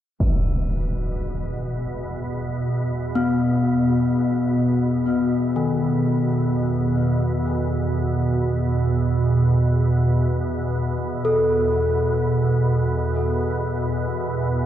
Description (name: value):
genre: dark ambient drone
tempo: free time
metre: none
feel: none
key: unclear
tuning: A4 = 439 Hz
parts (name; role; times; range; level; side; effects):
- organ-like drone; drone; 0.9-14.7 s; E2 to B2; -21 LUFS; right 1 dB; ensemble chorus, built-in reverb
- impact; percussion; 0.2-0.5 s; none; -26 LUFS; equal; low-pass filter on sfx
- bronze singing bowl; texture; 0.2-14.7 s; B4; -50 LUFS; right 1 dB; none
- gamelan-type bronze metallophone; arpeggios; 3.2-14.7 s; D#3 to A4; -23 LUFS; left 2 dB; diffuse ambient delay
room: wet cathedral reverb, RT60 7.2 s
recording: none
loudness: -19 LUFS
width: side -11 dB against mid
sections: 0.2-14.7 A section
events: none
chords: 0.2 E5